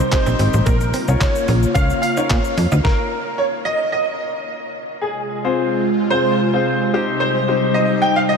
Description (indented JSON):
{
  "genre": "dance-pop",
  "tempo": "110 BPM",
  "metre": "4/4",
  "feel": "straight",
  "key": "F minor",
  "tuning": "A4 = 439 Hz",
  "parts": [
    { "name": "clear baby grand piano", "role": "melody", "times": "0.0-8.4 s", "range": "Ab4 to G5", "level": "-21 LUFS", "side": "right 2 dB", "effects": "ensemble chorus, ping-pong delay" },
    { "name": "airy breathy pad", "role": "sustained chords", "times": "0.0-8.4 s", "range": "C3 to F4", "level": "-22 LUFS", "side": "left 1 dB", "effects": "chorus, sidechain pumping" },
    { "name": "direct-recorded clean electric guitar", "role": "riff", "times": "0.0-2.8 s", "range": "Bb3 to F4", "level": "-30 LUFS", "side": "right 5 dB", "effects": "none" },
    { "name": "slap-like FM bass", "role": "bass", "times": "0.0-2.8 s", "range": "Ab1 to Bb2", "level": "-17 LUFS", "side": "equal", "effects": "sidechain pumping" },
    { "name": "warm concert grand piano", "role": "accompaniment", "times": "0.1-8.1 s", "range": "C4 to Db5", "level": "-23 LUFS", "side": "left 3 dB", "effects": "lush chorus, sidechain pumping" },
    { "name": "detuned 8-bit digital drum machine", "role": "drums", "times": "0.1-3.0 s", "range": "handclaps, hi-hat, kick drum, shaker, snare drum", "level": "-22 LUFS", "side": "equal", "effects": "none" }
  ],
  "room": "moderate huge ambient reverb, RT60 7.8 s",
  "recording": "dreamy mix soaked in reverb",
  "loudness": "-16 LUFS",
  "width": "side -6 dB against mid",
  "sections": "0.0-5.0 A section; 5.0-8.4 A section",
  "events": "stop 2.8-5.0",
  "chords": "0.0 Cm; 0.7 Bbm; 2.8 N.C.; 5.0 Fm; 6.9 Cm"
}